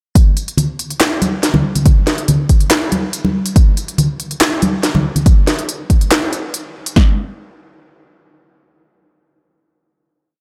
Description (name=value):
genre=dubstep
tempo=141 BPM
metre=4/4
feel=half-time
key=none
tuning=none
part: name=deep house drum kit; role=drums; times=0.2-7.1 s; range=kick drum, snare drum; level=-12 LUFS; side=equal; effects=overdrive
part: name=garage drum kit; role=drums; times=0.2-6.9 s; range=handclaps, hi-hat, snare drum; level=-19 LUFS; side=equal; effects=none
part: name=congas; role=percussion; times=0.6-5.2 s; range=none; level=-18 LUFS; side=equal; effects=none
room=little or no reverb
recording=none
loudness=-15 LUFS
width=mono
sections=0.2-7.0 drop; 7.0-10.4 final hit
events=drop 0.2-7.0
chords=none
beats=| 0.15 0.58 1.00 1.43 | 1.86 2.28 2.71 3.13 | 3.56 3.98 4.41 4.83 | 5.26 5.69 6.11 6.54 | 6.96